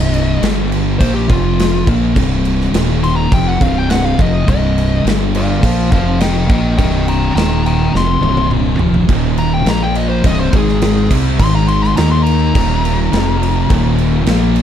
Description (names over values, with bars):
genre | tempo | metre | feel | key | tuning
stoner and doom metal | 104 BPM | 4/4 | straight | C minor | A4 = 440 Hz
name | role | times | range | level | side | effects
fuzz lead guitar | melody | 0.0-13.9 s | F4 to C6 | -20 LUFS | left 2 dB | distortion
thick fuzz guitar | riff | 0.0-14.6 s | C2 to Eb4 | -18 LUFS | left 10 dB | distortion
thick fuzz guitar | riff | 0.0-14.6 s | C2 to Eb4 | -19 LUFS | right 9 dB | distortion
fuzz fingered electric bass | bass | 0.0-14.6 s | C1 to Eb2 | -17 LUFS | equal | overdrive
big rock drum kit | drums | 0.1-14.6 s | crash cymbal, kick drum, snare drum, toms | -18 LUFS | equal | none
cranked stack guitar | riff | 9.1-14.6 s | C2 to Eb4 | -23 LUFS | left 1 dB | overdrive
room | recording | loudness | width
light reverb, studio ambience | dark, warm production | -11 LUFS | side -9 dB against mid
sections
0.0-14.6 A section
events
lead electric guitar solo 0.0-14.6; drum fill 7.9-9.1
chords
0.4 G5; 1.0 C5; 1.3 F5; 1.9 C5; 2.7 Eb5; 3.3 Cm; 5.0 G5; 5.6 Bbsus2; 5.9 F5; 6.5 Cm; 7.4 Eb5; 7.9 C5; 9.1 Eb5; 9.7 Bb5; 10.2 Cm; 10.5 Ab5; 11.1 C5; 11.4 Ab5; 12.0 Eb5; 13.1 F5; 13.7 Eb5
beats
0.42 1.00 1.58 | 2.16 2.74 3.31 3.89 | 4.47 5.05 5.62 6.20 | 6.78 7.35 7.93 8.51 | 9.08 9.66 10.24 10.81 | 11.39 11.96 12.54 13.12 | 13.69 14.27